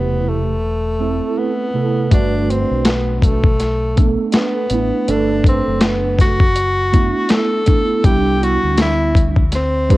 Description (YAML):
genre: hip hop, jazz-hop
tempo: 81 BPM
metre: 4/4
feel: swing 60% on 16ths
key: G major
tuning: A4 = 440 Hz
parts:
  - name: breathy tenor saxophone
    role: melody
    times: 0.0-10.0 s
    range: A3 to A4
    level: -19 LUFS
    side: left 1 dB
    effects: cassette tape
  - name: mellow tine electric piano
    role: accompaniment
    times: 0.0-10.0 s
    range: C3 to B4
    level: -19 LUFS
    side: right 4 dB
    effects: ensemble chorus, cassette tape
  - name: deep dub fingered electric bass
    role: bass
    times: 0.0-10.0 s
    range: E1 to D2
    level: -21 LUFS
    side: left 1 dB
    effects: none
  - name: dusty soul sampler-style drum kit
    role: drums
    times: 2.1-10.0 s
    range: hi-hat, kick drum, snare drum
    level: -14 LUFS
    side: left 1 dB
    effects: overdrive, cassette tape
room: digital ambience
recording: home recording on cassette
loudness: -13 LUFS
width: side -18 dB against mid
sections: 0.0-10.0 A section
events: none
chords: 0.0 Fmaj9 (rootless); 2.1 Gmaj9; 8.0 Cmaj9